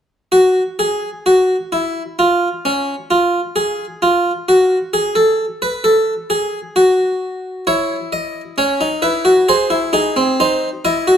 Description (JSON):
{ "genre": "classical, baroque-style 3-part fugue for harpsichord", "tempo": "66 BPM", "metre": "4/4", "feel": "straight", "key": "unclear", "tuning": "A4 = 440 Hz", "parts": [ { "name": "harpsichord", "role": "solo", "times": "0.3-11.2 s", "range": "B#3 to D#5", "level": "-14 LUFS", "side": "equal", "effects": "none" } ], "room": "moderate large studio reverb, RT60 1.3 s", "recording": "none", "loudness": "-14 LUFS", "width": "side -9 dB against mid", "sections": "0.3-11.2 A section", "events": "none", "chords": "0.3 N.C.; 7.7 C#m/E; 9.5 G#" }